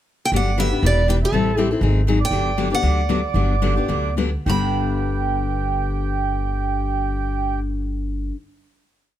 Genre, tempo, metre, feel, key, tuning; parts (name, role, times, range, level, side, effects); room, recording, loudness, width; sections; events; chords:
acoustic string swing (jazz manouche); 202-239 BPM; 4/4; swing 55% on 8ths; G major; A4 = 436 Hz
picked steel-string acoustic guitar; melody; 0.3-8.3 s; A4 to B5; -24 LUFS; right 1 dB
mellow accordion; second line; 0.3-7.6 s; E4 to D5; -26 LUFS; right 8 dB
picked steel-string acoustic guitar; accompaniment; 0.3-8.4 s; G2 to A4; -24 LUFS; left 6 dB
upright bass; bass; 0.3-8.3 s; E1 to D2; -22 LUFS; equal
light reverb; -18 LUFS; side -12 dB against mid
0.0-0.3 pickup bar; 0.3-4.5 A section; 4.5-6.8 final chord
slowing down 2.3-4.5
0.3 Gmaj7; 0.8 Em7; 1.3 Am7; 1.8 Ab7; 2.3 Gmaj7; 4.5 G